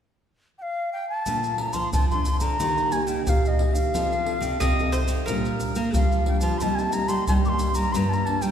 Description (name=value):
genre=samba and choro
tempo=90 BPM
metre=4/4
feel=straight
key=Bb major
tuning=A4 = 436 Hz
part: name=wooden flute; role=melody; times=0.6-8.5 s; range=Eb5 to D6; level=-26 LUFS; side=left 1 dB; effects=none
part: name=nylon-string guitar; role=accompaniment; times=1.3-8.5 s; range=F2 to A4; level=-29 LUFS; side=equal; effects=none
part: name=nylon-string guitar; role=bass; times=1.3-8.5 s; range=G2 to Bb3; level=-29 LUFS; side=equal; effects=none
part: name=tube shaker, surdo and pandeiro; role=percussion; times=1.3-8.5 s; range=none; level=-25 LUFS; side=equal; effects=none
part: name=mandolin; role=second line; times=4.6-5.7 s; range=Bb4 to Eb5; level=-30 LUFS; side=left 1 dB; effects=none
room=wet concert hall reverb, RT60 2.0 s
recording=recorded in a church or concert hall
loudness=-21 LUFS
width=side -8 dB against mid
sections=0.0-1.3 A section; 1.3-8.5 B section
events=none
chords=0.0 N.C.; 1.3 Bbmaj7; 2.6 Eb; 3.9 F7; 5.3 Bb6; 6.6 Cm7; 7.9 Gm7